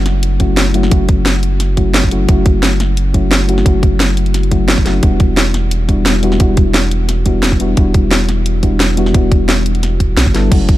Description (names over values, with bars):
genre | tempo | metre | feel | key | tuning
liquid drum and bass | 175 BPM | 4/4 | straight | E dorian | A4 = 442 Hz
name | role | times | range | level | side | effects
mellow FM electric piano | accompaniment | 0.0-10.8 s | F#3 to A4 | -17 LUFS | left 2 dB | chorus, cassette tape, tape echo
sub bass with octave | bass | 0.0-10.8 s | E1 to B1 | -15 LUFS | equal | tube saturation
garage drum kit | drums | 0.1-10.8 s | crash cymbal, hi-hat, snare drum | -17 LUFS | equal | none
electronic kick drum | drums | 0.4-10.8 s | none | -12 LUFS | equal | none
room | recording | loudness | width
little or no reverb | dark, warm production | -10 LUFS | side -15 dB against mid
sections
0.0-10.8 A section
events
none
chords
0.0 F#m7; 5.0 Em9